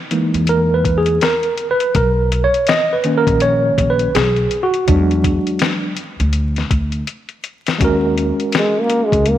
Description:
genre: hip hop, jazz-hop.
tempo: 82 BPM.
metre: 4/4.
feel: swing 61% on 16ths.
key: Eb minor.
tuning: A4 = 441 Hz.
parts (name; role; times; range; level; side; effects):
tine electric piano; accompaniment; 0.1-9.4 s; D#3 to D#5; -16 LUFS; right 1 dB; overdrive, fast stereo tremolo.
lo-fi sampler-style drum kit; drums; 0.1-9.4 s; hi-hat, kick drum, snare drum; -20 LUFS; left 2 dB; none.
upright bass; bass; 0.3-9.4 s; A#1 to Fb2; -19 LUFS; equal; none.
breathy trombone; melody; 8.6-9.4 s; Ab3 to Bb3; -15 LUFS; equal; none.
room: light reverb, small room ambience.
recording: 1960s-style stereo, vinyl crackle.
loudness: -14 LUFS.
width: side -12 dB against mid.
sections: 0.0-7.8 A section; 7.8-9.4 A section.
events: tine electric piano solo 0.0-7.8; drum fill 7.1-7.8; trombone solo 7.8-9.4.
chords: 0.0 Gb13 (rootless); 1.9 Bmaj7; 4.9 E9; 7.8 Ebm7.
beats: 0.48 1.22 | 1.95 2.68 3.41 4.14 | 4.88 5.61 6.34 7.07 | 7.80 8.53 9.27.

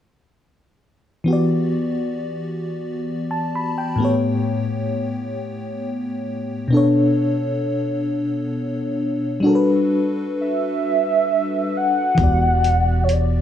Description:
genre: slow six-eight R&B.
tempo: 44 BPM (dotted quarters).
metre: 6/8.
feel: straight.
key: E dorian.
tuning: A4 = 440 Hz.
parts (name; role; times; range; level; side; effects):
FM electric piano with soft pad layer; accompaniment; 1.2-13.4 s; A2 to B5; -20 LUFS; left 1 dB; chorus, tremolo.
warm velvety synth lead; melody; 10.4-13.4 s; C#5 to F#5; -19 LUFS; right 2 dB; chorus, slapback echo.
mellow fretless electric bass; bass; 12.2-13.4 s; E1; -18 LUFS; equal; wide subtle chorus.
dusty soul sampler-style drum kit; drums; 12.2-13.3 s; hi-hat, kick drum; -19 LUFS; equal; none.
room: light reverb.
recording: none.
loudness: -18 LUFS.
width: side -10 dB against mid.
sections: 1.3-12.2 A section; 12.2-13.4 B section.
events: none.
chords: 1.3 Em9; 4.0 A9; 6.7 Bm9; 9.4 Gmaj9; 12.2 Em9.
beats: | 1.26 2.62 | 3.99 5.35 | 6.72 8.08 | 9.44 10.81 | 12.17.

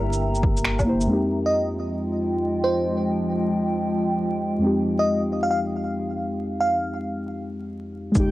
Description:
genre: future garage.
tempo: 136 BPM.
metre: 4/4.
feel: swing 65% on 16ths.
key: F minor.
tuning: A4 = 440 Hz.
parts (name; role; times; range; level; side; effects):
muted felt-like synth keys; accompaniment; 0.0-8.3 s; F2 to C5; -26 LUFS; left 1 dB; chorus, sidechain pumping, cassette tape, tape echo.
warbly tape-like pad; sustained chords; 0.0-8.3 s; F3 to Bb5; -26 LUFS; equal; chorus, built-in reverb, sidechain pumping, cassette tape.
dark detuned saw bass; bass; 0.0-1.1, 8.2-8.3 s; F1 to G1; -26 LUFS; equal; sidechain pumping.
electronic shaker, finger snaps and woodblock; drums; 0.1-1.1, 8.2-8.3 s; none; -27 LUFS; equal; none.
electronic kick drum; drums; 0.4-0.9, 8.2-8.3 s; none; -23 LUFS; equal; overdrive.
bell-like FM electric piano; melody; 1.5-7.0 s; C5 to F5; -25 LUFS; equal; chorus, phaser, tape echo.
drifting glass-harmonics texture; texture; 8.2-8.3 s; G5; -41 LUFS; right 4 dB; chorus, built-in reverb, cassette tape.
room: moderate studio reverb, RT60 0.6 s.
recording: home recording on cassette, vinyl crackle.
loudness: -21 LUFS.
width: side -16 dB against mid.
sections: 0.0-1.1 A section; 1.1-8.2 B section.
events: band accent 0.7; break 7.3-8.2.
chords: 0.0 C7; 1.1 Fm9.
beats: 0.21 0.65 | 1.09 1.53 1.98 2.42 | 2.86 3.30 3.74 4.18 | 4.62 5.06 5.50 5.95 | 6.39 6.83 7.27 7.71 | 8.15.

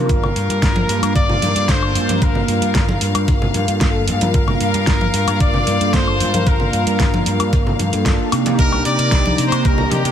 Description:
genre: nu-disco, nu disco.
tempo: 113 BPM.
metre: 4/4.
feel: straight.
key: G minor.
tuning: A4 = 441 Hz.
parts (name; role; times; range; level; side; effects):
mellow synth brass; accompaniment; 0.0-10.1 s; Bb3 to Bb4; -22 LUFS; right 2 dB; chorus, analog delay.
picked electric bass; bass; 0.0-10.1 s; G1 to C3; -20 LUFS; equal; tube saturation.
bright trumpet section; melody; 0.1-10.1 s; G4 to D5; -22 LUFS; left 2 dB; ping-pong delay.
rich studio string section; sustained chords; 0.1-10.1 s; F5 to Bb5; -26 LUFS; left 6 dB; sidechain pumping.
electronic kick drum; drums; 0.1-9.8 s; none; -18 LUFS; equal; overdrive.
pop drum kit; drums; 0.1-10.1 s; hi-hat, snare drum, woodblock; -24 LUFS; left 1 dB; none.
congas; percussion; 0.2-10.0 s; none; -26 LUFS; right 1 dB; none.
room: light reverb.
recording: none.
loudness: -14 LUFS.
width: side -9 dB against mid.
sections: 0.0-10.1 A section.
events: filter sweep on analog polysynth 0.0-10.1.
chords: 0.1 Gm7; 8.3 Cm7.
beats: | 0.09 0.62 1.16 1.69 | 2.22 2.75 3.28 3.81 | 4.34 4.87 5.40 5.93 | 6.47 7.00 7.53 8.06 | 8.59 9.12 9.65.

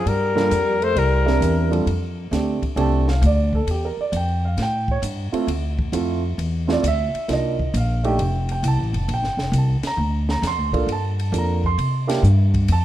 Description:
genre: jazz, small-group swing and bop.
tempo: 133 BPM.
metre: 4/4.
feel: swing 68% on 8ths.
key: F major.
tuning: A4 = 440 Hz.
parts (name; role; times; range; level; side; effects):
breathy trumpet; melody; 0.0-1.7 s; Bb4 to C5; -22 LUFS; left 4 dB; none.
warm alto saxophone; second line; 0.0-1.7 s; G3 to A3; -26 LUFS; right 1 dB; none.
upright bass; bass; 0.0-12.8 s; F1 to C3; -20 LUFS; equal; none.
compact cocktail drum kit; drums; 0.1-12.8 s; hi-hat, kick drum, ride cymbal, snare drum; -30 LUFS; left 1 dB; none.
dark grand piano; accompaniment; 0.4-12.8 s; G3 to C6; -24 LUFS; right 4 dB; none.
room: light reverb.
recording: dark, warm production.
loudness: -18 LUFS.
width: side -13 dB against mid.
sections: 0.0-1.9 A section; 1.9-12.8 B section.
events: none.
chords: 0.1 Gm7; 1.0 C7; 1.9 F69; 3.7 Em7b5; 4.6 Am7; 5.5 Dm9; 7.3 Cm11; 8.2 F; 9.1 Bb69; 11.8 C9.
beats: | 0.06 0.51 0.96 1.41 | 1.86 2.32 2.77 3.22 | 3.67 4.12 4.57 5.03 | 5.48 5.93 6.38 6.83 | 7.28 7.73 8.18 8.63 | 9.08 9.53 9.98 10.43 | 10.88 11.33 11.78 12.23 | 12.68.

